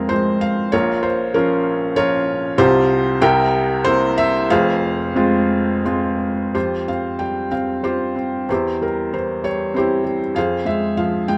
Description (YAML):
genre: classical, lyrical solo piano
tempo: 82-99 BPM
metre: 3/4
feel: rubato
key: F harmonic minor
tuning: A4 = 440 Hz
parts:
  - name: felt-muted upright piano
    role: solo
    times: 0.0-11.4 s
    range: F1 to G5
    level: -19 LUFS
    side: equal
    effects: none
room: light reverb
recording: none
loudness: -19 LUFS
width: mono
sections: 0.0-6.6 A section; 6.6-11.4 B section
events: none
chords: 0.0 Fm; 0.7 Bbm; 2.6 Csus4; 3.2 C7; 4.5 Fm; 6.6 Fsus2; 8.5 C/E; 10.4 Fm